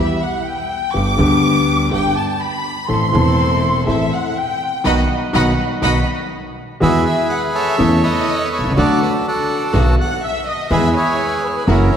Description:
tango; 123 BPM; 4/4; rubato; E major from 6.8 s; A4 = 439 Hz
warm symphonic violin section; second line; 0.0-12.0 s; A4 to D6; -21 LUFS; left 1 dB
warm concert grand piano; accompaniment; 0.0-11.9 s; E1 to A4; -18 LUFS; left 1 dB
rich chamber string section; stabs; 0.0-11.9 s; G#3 to A4; -27 LUFS; right 1 dB
upright bass; bass; 0.0-11.9 s; E1 to E2; -20 LUFS; right 1 dB
bandoneon; melody; 6.8-12.0 s; C#4 to F#5; -18 LUFS; right 2 dB
wet concert hall reverb, RT60 2.5 s; -14 LUFS; side -8 dB against mid
0.0-6.8 A section; 6.8-12.0 B section
violin section solo 0.0-6.8; band accent 4.9-6.8
0.0 Em; 0.9 G; 2.9 Am; 4.9 B; 6.8 Eadd9; 7.8 Aadd9/E; 8.8 D; 9.7 B; 10.7 E

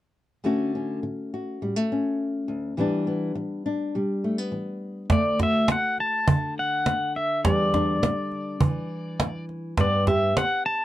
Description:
acoustic folk duo or small band; 103 BPM; 4/4; straight; D major; A4 = 442 Hz
nylon-string guitar; accompaniment; 0.4-10.8 s; D2 to G4; -26 LUFS; left 1 dB
pedal steel guitar; melody; 5.1-10.8 s; D5 to A5; -25 LUFS; equal
cajon; percussion; 5.1-10.7 s; -23 LUFS; right 2 dB
light reverb; dark, warm production; -23 LUFS; side -14 dB against mid
0.4-5.1 A section; 5.1-10.8 B section
0.4 Dmaj7; 2.8 Em7; 5.1 D; 7.4 Em7; 9.8 G

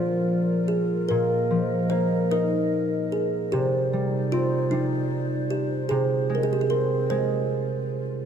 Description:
children's music, lullaby; 50 BPM (dotted quarters); 6/8; rubato; A4 = 440 Hz
kalimba; melody; 0.0-8.3 s; Eb4 to C5; -26 LUFS; right 1 dB
concert harp; accompaniment; 0.0-8.3 s; Bb2 to Eb4; -25 LUFS; equal
breathy mellow large flute ensemble; sustained chords; 0.0-8.3 s; C4 to Eb5; -33 LUFS; left 1 dB
light reverb; -22 LUFS; side -8 dB against mid
0.0-8.3 A section
0.0 Bb; 1.1 Bbsus4; 3.5 Cmadd9; 5.9 Fm/C

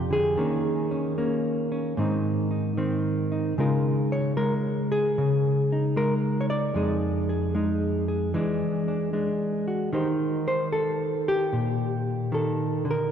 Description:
solo jazz; 75 BPM; 4/4; swing 68% on 8ths; A4 = 440 Hz
hollow-body jazz guitar; solo; 0.0-13.1 s; F2 to D5; -23 LUFS; equal
wet church reverb, RT60 3.4 s; recorded in a church or concert hall; -23 LUFS; side -8 dB against mid
0.0-13.1 A section
0.4 Eb7sus4; 2.0 Ab; 3.6 Db69; 6.8 Fm7; 8.3 E9; 9.9 Eb6

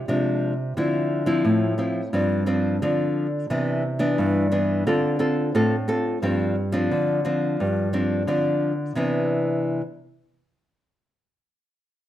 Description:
samba; 88 BPM; 4/4; straight; C major; A4 = 440 Hz
nylon-string guitar; solo; 0.0-9.8 s; G2 to A4; -21 LUFS; equal
moderate large studio reverb, RT60 0.8 s; -21 LUFS; side -12 dB against mid
0.0-9.0 A section; 9.0-11.7 B section
0.0 Fm6/C; 0.8 Dm9; 2.1 G7sus4; 3.5 Cmaj9; 4.9 Dm7; 6.2 G7sus4; 9.0 Cmaj9

